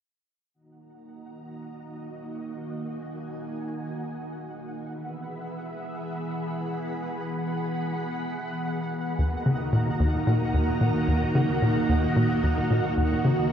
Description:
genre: ambient, sequencer-driven space music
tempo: 111 BPM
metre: 4/4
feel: straight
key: Eb phrygian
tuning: A4 = 440 Hz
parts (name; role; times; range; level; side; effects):
- string machine, full ensemble; sustained chords; 0.5-13.5 s; Eb3 to B5; -28 LUFS; right 1 dB; ensemble chorus
- pulsing gated texture; texture; 1.0-13.5 s; Gb5; -37 LUFS; right 2 dB; chorus, built-in reverb
- tight sequencer bass; riff; 9.2-13.5 s; Eb2 to Db3; -24 LUFS; left 1 dB; lush chorus, tape echo
room: wet concert hall reverb, RT60 2.0 s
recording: worn, warbling old tape, cassette tape, warbly pitch drift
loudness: -25 LUFS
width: side -9 dB against mid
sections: 0.5-13.5 A section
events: fade-in on string machine 0.5-13.5; fade-in on synth texture 0.5-13.5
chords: 0.5 Ebm; 4.9 E; 9.2 Ebm

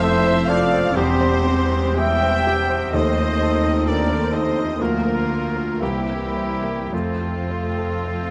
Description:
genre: classical, romantic movement for piano and orchestra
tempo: 52-65 BPM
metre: 4/4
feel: rubato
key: F major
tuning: A4 = 441 Hz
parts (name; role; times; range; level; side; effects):
- clear grand piano; melody; 0.0-8.3 s; C2 to C5; -26 LUFS; equal; none
- warm symphonic violin section; melody; 0.0-8.3 s; Bb3 to C4; -38 LUFS; equal; none
- clear oboe; second line; 0.0-8.3 s; F4 to G5; -31 LUFS; equal; none
- mellow concert flute; second line; 0.0-8.3 s; C4 to E5; -31 LUFS; equal; none
- warm symphonic violin section; second line; 0.0-8.3 s; F4 to G5; -30 LUFS; equal; none
- warm symphonic viola section; accompaniment; 0.0-8.3 s; E3 to C4; -31 LUFS; equal; none
- mellow French horn section; sustained chords; 0.0-8.3 s; F3 to G4; -30 LUFS; equal; none
- clear trumpet section; stabs; 0.0-8.3 s; C4 to E5; -29 LUFS; equal; none
- rich symphonic cello section; bass; 0.0-8.3 s; C2 to F2; -31 LUFS; equal; none
- rich symphonic double bass section; bass; 0.0-8.3 s; E1 to Eb2; -31 LUFS; equal; none
- warm trombone section; sustained chords; 0.9-7.4 s; E3 to C4; -33 LUFS; equal; none
room: moderate concert hall reverb, RT60 2.2 s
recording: none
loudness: -20 LUFS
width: mono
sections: 0.0-8.3 A section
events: none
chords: 0.0 F; 1.0 C/E; 2.9 F7/Eb; 4.8 Bb/D; 5.8 C7; 6.9 F

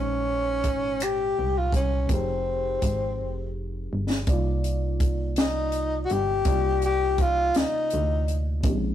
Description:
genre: slow six-eight R&B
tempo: 55 BPM (dotted quarters)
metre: 6/8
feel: straight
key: C minor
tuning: A4 = 440 Hz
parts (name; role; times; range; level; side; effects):
- breathy tenor saxophone; melody; 0.0-8.4 s; C4 to G4; -25 LUFS; left 2 dB; none
- mellow FM electric piano; accompaniment; 0.0-8.9 s; Bb2 to D5; -34 LUFS; right 1 dB; chorus
- solid FM bass; bass; 0.0-8.9 s; F1 to D2; -28 LUFS; right 1 dB; none
- compact cocktail drum kit; drums; 0.6-8.8 s; finger snaps, hi-hat, kick drum, snare drum; -25 LUFS; equal; none
room: light reverb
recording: rough rehearsal-room recording, warm saturation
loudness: -23 LUFS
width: side -11 dB against mid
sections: 0.0-4.3 A section; 4.3-8.9 B section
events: drum fill 3.2-4.3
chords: 0.0 Bbm11; 2.1 Fm11; 4.3 Cm11

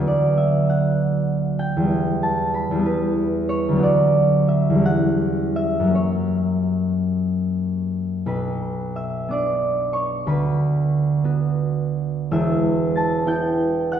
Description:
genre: classical, solo harp piece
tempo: 45-66 BPM (dotted quarters)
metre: 6/8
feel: rubato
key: B minor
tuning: A4 = 440 Hz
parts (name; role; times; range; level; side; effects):
- concert harp; solo; 0.0-14.0 s; E1 to A6; -18 LUFS; right 1 dB; none
room: wet concert hall reverb, RT60 2.0 s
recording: recorded in a church or concert hall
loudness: -18 LUFS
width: side -9 dB against mid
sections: 0.0-8.3 A section; 8.3-14.0 B section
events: none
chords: 0.1 Bm/D; 1.9 Em; 3.8 Bm/D; 4.8 C#dim/E; 5.9 F#; 8.3 Bm; 10.3 Bm/D; 12.3 Em

